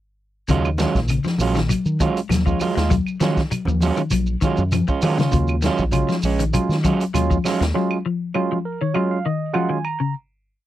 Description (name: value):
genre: afrobeat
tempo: 99 BPM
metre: 4/4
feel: straight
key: Eb minor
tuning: A4 = 440 Hz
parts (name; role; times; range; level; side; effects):
- clean electric guitar; arpeggios; 0.5-10.1 s; Db3 to Ab3; -24 LUFS; left 5 dB; lush chorus
- electric guitar at the edge of break-up; stabs; 0.5-7.6 s; Gb3 to F4; -21 LUFS; right 6 dB; none
- fingered electric bass; bass; 0.5-7.7 s; Bb1 to Eb3; -22 LUFS; equal; none
- vintage drum kit; drums; 0.5-7.8 s; hi-hat, kick drum, snare drum; -26 LUFS; equal; none
- congas; percussion; 0.5-5.2 s; none; -27 LUFS; right 2 dB; none
- shekere; percussion; 0.5-7.8 s; none; -27 LUFS; right 1 dB; none
- claves; percussion; 0.7-10.0 s; none; -32 LUFS; right 5 dB; none
- barky tine electric piano; accompaniment; 5.3-10.1 s; Gb3 to Bb5; -23 LUFS; right 6 dB; overdrive
room: light reverb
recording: dry, close 1970s-style studio recording, faint mains hum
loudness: -18 LUFS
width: side -13 dB against mid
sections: 0.5-10.2 groove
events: tine electric piano fill 8.4-10.2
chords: 0.5 Ebm11